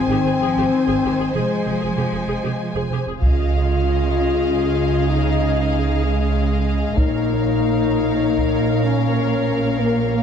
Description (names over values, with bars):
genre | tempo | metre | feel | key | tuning
cinematic, epic orchestral film score | 64 BPM (dotted quarters) | 6/8 | straight | unclear | A4 = 439 Hz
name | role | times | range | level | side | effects
warm symphonic violin section | second line | 0.0-10.2 s | C5 to Ab5 | -30 LUFS | left 2 dB | none
mellow French horn section | sustained chords | 0.0-10.2 s | Ab3 to F4 | -21 LUFS | left 5 dB | none
rich symphonic cello section | bass | 0.0-10.2 s | Bb2 to F3 | -26 LUFS | right 4 dB | none
rich symphonic viola section | accompaniment | 0.1-10.2 s | G4 to Bb4 | -29 LUFS | right 1 dB | none
clear symphonic double bass section | bass | 0.1-10.2 s | F1 to Db2 | -22 LUFS | right 4 dB | none
rich symphonic violin section | melody | 3.2-10.2 s | F5 | -31 LUFS | left 5 dB | none
taiko ensemble | drums | 3.2-8.7 s | none | -22 LUFS | equal | none
room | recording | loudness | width
moderate concert hall reverb, RT60 2.3 s | dark, warm production | -17 LUFS | side -7 dB against mid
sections
0.0-3.2 A section; 3.2-10.2 B section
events
none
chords
0.0 Ab; 1.3 Fm; 3.2 Dbadd9; 7.0 Bbm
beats
0.41 | 1.35 2.29 | 3.22 4.16 | 5.10 6.04 | 6.97 7.91 | 8.85 9.79